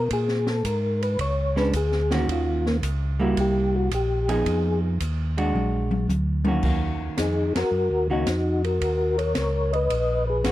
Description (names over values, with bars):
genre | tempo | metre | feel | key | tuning
soul jazz organ trio | 110 BPM | 4/4 | swing 69% on 8ths | Eb minor | A4 = 439 Hz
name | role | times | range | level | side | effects
percussive tonewheel organ | melody | 0.0-10.5 s | Bb3 to Eb5 | -24 LUFS | left 2 dB | slow rotary speaker, chorus vibrato, slapback echo
mellow tonewheel organ | bass | 0.0-10.5 s | Ab1 to Bb2 | -25 LUFS | equal | overdrive, chorus vibrato, slow rotary speaker
open jazz drum kit | drums | 0.1-10.5 s | crash cymbal, hi-hat, kick drum, ride cymbal, snare drum, toms | -30 LUFS | equal | none
vintage hollow-body jazz guitar | accompaniment | 1.6-10.5 s | Eb3 to Ab4 | -26 LUFS | right 2 dB | none
room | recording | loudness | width
light reverb | dry, close 1970s-style studio recording | -21 LUFS | side -14 dB against mid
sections
0.0-6.6 A section; 6.6-10.5 B section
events
tonewheel organ solo 0.0-6.6; drum fill 5.5-6.6; band accent 7.5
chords
0.1 Bb7#9; 2.3 Ebm7; 3.4 C7; 4.5 Fm7b5; 5.5 Bb7b13; 6.6 Ebm7